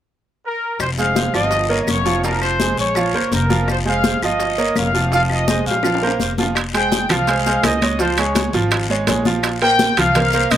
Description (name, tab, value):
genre	latin, salsa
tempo	167 BPM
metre	4/4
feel	straight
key	F minor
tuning	A4 = 441 Hz
part	clear trumpet section	melody	0.5-10.6 s	Bb4 to G5	-19 LUFS	equal	slapback echo
part	upright bass	bass	0.8-10.6 s	F1 to Db2	-23 LUFS	equal	none
part	bongos	percussion	0.8-10.6 s	none	-28 LUFS	left 8 dB	none
part	claves	percussion	0.8-10.6 s	none	-29 LUFS	left 8 dB	none
part	congas	percussion	0.8-10.6 s	none	-23 LUFS	left 2 dB	none
part	guiro	percussion	0.8-10.6 s	none	-28 LUFS	left 7 dB	none
part	maracas	percussion	0.8-10.6 s	none	-32 LUFS	right 10 dB	none
part	bright upright piano	accompaniment	1.0-10.6 s	F3 to F5	-20 LUFS	right 3 dB	none
part	timbales	percussion	6.6-10.6 s	none	-22 LUFS	right 6 dB	none
room	little or no reverb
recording	recorded outdoors, with no room sound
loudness	-15 LUFS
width	side -11 dB against mid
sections	0.8-6.6 A section; 6.6-10.6 B section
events	drum fill 5.5-6.6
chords	0.0 N.C.; 0.8 Fm; 1.5 Gm7b5; 2.2 Fm; 3.0 Bbmadd9; 3.7 Fm; 4.4 Gm7b5; 5.1 Fm7; 5.8 Bbsus2; 6.6 Fm7; 8.0 Db; 9.4 Bbsus2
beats	0.09 0.45 | 0.81 1.17 1.52 1.88 | 2.24 2.60 2.96 3.32 | 3.68 4.04 4.40 4.76 | 5.12 5.48 5.84 6.20 | 6.56 6.92 7.28 7.64 | 8.00 8.36 8.71 9.07 | 9.43 9.79 10.15 10.51